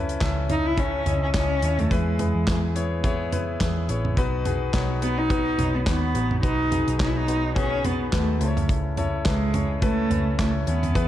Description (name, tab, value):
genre	piano-driven pop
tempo	106 BPM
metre	4/4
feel	swing 56% on 16ths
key	unclear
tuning	A4 = 445 Hz
part	clear concert grand piano	accompaniment	0.0-11.1 s	B2 to E5	-29 LUFS	left 4 dB	none
part	hollow-body short-scale picked electric bass	bass	0.0-11.1 s	A1 to E2	-26 LUFS	equal	none
part	modern studio drum kit	drums	0.1-11.1 s	handclaps, hi-hat, kick drum, snare drum, toms	-27 LUFS	right 1 dB	none
part	warm cello	melody	0.5-11.1 s	G#3 to E4	-26 LUFS	right 1 dB	none
room	light reverb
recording	dark, warm production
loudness	-21 LUFS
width	side -12 dB against mid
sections	0.0-11.1 A section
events	none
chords	0.0 A/C#; 1.9 E; 4.2 B; 8.4 A/C#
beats	0.21 0.78 1.34 | 1.91 2.48 3.04 3.61 | 4.17 4.74 5.30 5.87 | 6.43 7.00 7.56 8.13 | 8.69 9.26 9.82 10.39 | 10.95